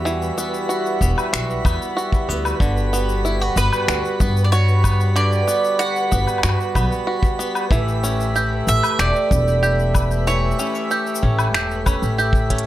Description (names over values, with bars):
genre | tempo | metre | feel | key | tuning
folktronica | 94 BPM | 4/4 | straight | unclear | A4 = 439 Hz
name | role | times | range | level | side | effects
hand-pumped harmonium | sustained chords | 0.0-12.7 s | G3 to E5 | -25 LUFS | equal | none
bluegrass banjo | arpeggios | 0.0-12.7 s | D3 to G4 | -26 LUFS | right 1 dB | vintage 12-bit sampler grit, tape echo
upright bass | bass | 0.0-12.7 s | E1 to G2 | -20 LUFS | equal | none
twinkling granular texture | texture | 0.0-12.7 s | B4 to B5 | -31 LUFS | right 2 dB | built-in reverb
organic electronic drum kit | drums | 0.1-12.7 s | finger snaps, hi-hat, shaker, woodblock | -26 LUFS | left 3 dB | overdrive
kick drum | drums | 1.0-12.6 s | none | -20 LUFS | equal | none
mandolin | melody | 3.6-12.1 s | B4 to F#5 | -22 LUFS | right 2 dB | tape echo
room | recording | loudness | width
light reverb | none | -17 LUFS | side -14 dB against mid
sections
0.0-12.7 A section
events
drum fill 12.5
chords
0.0 Emadd9; 2.6 Gmaj7; 7.7 A7